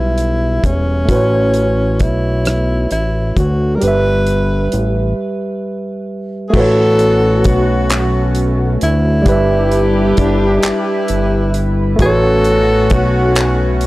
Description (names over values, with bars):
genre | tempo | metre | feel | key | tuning
slow six-eight R&B | 44 BPM (dotted quarters) | 6/8 | straight | A mixolydian | A4 = 440 Hz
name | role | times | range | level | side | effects
breathy tenor saxophone | melody | 0.0-13.8 s | C#4 to B4 | -19 LUFS | equal | tape echo
barky tine electric piano | accompaniment | 0.0-13.9 s | G3 to E5 | -17 LUFS | right 1 dB | none
fat analog bass | bass | 0.0-13.9 s | E1 to D2 | -16 LUFS | equal | none
damped 70s drum kit | drums | 0.2-13.9 s | crash cymbal, handclaps, hi-hat, kick drum, rim click | -17 LUFS | equal | none
chorused pulse-width pad | sustained chords | 6.5-13.9 s | G3 to B4 | -23 LUFS | left 1 dB | none
warm horn section | stabs | 6.5-13.9 s | B3 to G4 | -21 LUFS | left 1 dB | tape echo
room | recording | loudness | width
studio reverb | dry, gritty hardware recording | -12 LUFS | side -18 dB against mid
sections
0.0-6.5 A section; 6.5-13.9 B section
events
break 5.2-6.5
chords
0.0 G6; 1.1 A69; 3.8 G6; 6.5 A69; 9.3 G6; 12.0 A69